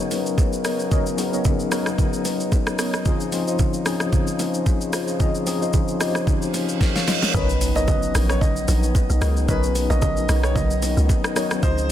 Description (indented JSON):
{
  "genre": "amapiano",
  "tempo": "112 BPM",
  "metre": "4/4",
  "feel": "swing 55% on 16ths",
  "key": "B major",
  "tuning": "A4 = 441 Hz",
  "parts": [
    { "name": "mellow tine electric piano", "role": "accompaniment", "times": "0.0-11.9 s", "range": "E#3 to E#5", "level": "-26 LUFS", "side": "left 5 dB", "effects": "fast tremolo" },
    { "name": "warm French horn section", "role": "sustained chords", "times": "0.0-11.9 s", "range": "C#3 to B#4", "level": "-30 LUFS", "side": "right 1 dB", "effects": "sidechain pumping" },
    { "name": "smooth R&B drum kit", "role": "drums", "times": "0.1-11.9 s", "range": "hi-hat, kick drum, rim click, shaker, snare drum", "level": "-23 LUFS", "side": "equal", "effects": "none" },
    { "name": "bongos and congas", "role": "percussion", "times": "0.1-11.9 s", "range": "none", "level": "-31 LUFS", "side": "right 6 dB", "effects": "none" },
    { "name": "deep mellow chord stab", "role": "stabs", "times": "0.6-11.8 s", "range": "B3 to D#5", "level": "-31 LUFS", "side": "equal", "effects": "chorus, phaser, ping-pong delay" },
    { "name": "reverse cymbal and impact", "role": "sound effects", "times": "6.5-9.5 s", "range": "none", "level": "-29 LUFS", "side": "right 2 dB", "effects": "none" },
    { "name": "warm grand piano", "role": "melody", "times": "7.3-11.9 s", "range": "B4 to D#5", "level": "-27 LUFS", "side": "right 2 dB", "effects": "ping-pong delay" },
    { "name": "hollow log drum bass", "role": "bass", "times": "7.3-11.9 s", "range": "A#1 to C#2", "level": "-21 LUFS", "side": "equal", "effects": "none" }
  ],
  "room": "light reverb",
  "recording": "dense, heavily limited modern master",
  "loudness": "-18 LUFS",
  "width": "side -11 dB against mid",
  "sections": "0.0-7.3 A section; 7.3-11.9 B section",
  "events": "reverse cymbal 6.5-7.3; drum fill 6.8-7.3; drop 7.3-11.9; impact 7.3-9.5",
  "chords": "0.0 Bmaj9; 3.1 C#maj9; 7.3 Bmaj9"
}